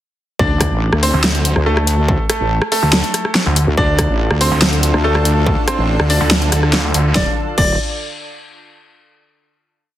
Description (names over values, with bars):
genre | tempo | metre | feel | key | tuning
heavy wobble dubstep | 142 BPM | 4/4 | half-time | D minor | A4 = 442 Hz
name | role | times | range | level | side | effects
bright grand piano | melody | 0.4-7.7 s | A3 to D5 | -20 LUFS | equal | digital delay
wobble bass | bass | 0.4-7.8 s | D1 to D2 | -16 LUFS | equal | chorus, overdrive
electronic kick drum | drums | 0.4-7.7 s | none | -19 LUFS | equal | distortion, studio reverb
dubstep drum kit | drums | 0.6-7.7 s | crash cymbal, hi-hat, rim click, snare drum | -18 LUFS | equal | studio reverb
snarling distorted saw bass | bass | 1.1-7.1 s | D2 | -15 LUFS | equal | distortion, overdrive
lush unison pad | sustained chords | 3.8-7.4 s | D3 to A4 | -24 LUFS | left 1 dB | chorus, sidechain pumping
room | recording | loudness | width
light reverb | heavily compressed radio sound, multiband compression | -13 LUFS | side -12 dB against mid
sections
0.4-7.2 drop; 7.2-8.8 final chord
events
drop 0.4-7.2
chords
0.4 Dm